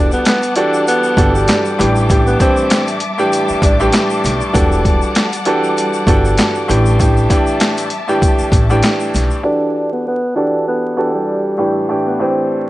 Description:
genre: hip hop, boom-bap hip-hop.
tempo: 98 BPM.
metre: 4/4.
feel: swing 56% on 16ths.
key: E minor.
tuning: A4 = 440 Hz.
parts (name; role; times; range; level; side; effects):
mellow tenor saxophone; melody; 0.0-3.8, 9.4-12.7 s; G3 to D4; -18 LUFS; equal; high-pass filter, low-pass filter.
bright upright piano; accompaniment; 0.0-12.7 s; A2 to A4; -16 LUFS; equal; cassette tape, high-pass filter, low-pass filter.
warm studio string section; sustained chords; 0.0-9.4 s; G3 to D6; -22 LUFS; left 2 dB; high-pass filter, low-pass filter.
upright bass; bass; 0.0-9.3 s; E1 to B1; -16 LUFS; equal; none.
tube shaker; percussion; 0.1-9.4 s; none; -34 LUFS; left 5 dB; none.
boom bap sampler-style drum kit; drums; 0.3-9.3 s; handclaps, hi-hat, kick drum, snare drum; -15 LUFS; equal; overdrive, vintage 12-bit sampler grit.
room: light reverb, small room reverb.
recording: vinyl crackle, nothing above 10.3 kHz.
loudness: -12 LUFS.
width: side -16 dB against mid.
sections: 0.0-9.4 A section; 9.4-12.7 B section.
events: none.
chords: 0.0 Em11; 1.8 A7sus4; 4.5 Em11; 6.7 A7sus4; 9.4 Em11; 11.6 A7sus4.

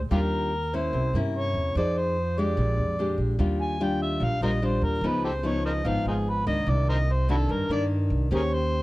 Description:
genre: bossa nova.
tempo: 146 BPM.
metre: 4/4.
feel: straight.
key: Eb major.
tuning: A4 = 437 Hz.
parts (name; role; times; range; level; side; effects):
nylon-string guitar; accompaniment; 0.0-8.8 s; G2 to C5; -28 LUFS; left 1 dB; none.
upright bass; bass; 0.0-8.8 s; Ab1 to G2; -26 LUFS; right 1 dB; none.
overdriven harmonica; melody; 0.1-8.8 s; Eb4 to Ab5; -29 LUFS; equal; none.
room: light reverb.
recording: close, detailed microphones.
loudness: -23 LUFS.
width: side -19 dB against mid.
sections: 0.0-3.4 A section; 3.4-8.8 B section.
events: harmonica solo 3.4-8.8.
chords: 0.1 Ebmaj9; 0.9 C7b9; 1.8 Fm7; 2.6 Bb6; 3.4 Ebmaj9; 5.0 Db9; 6.7 Cm9; 8.3 Eb6.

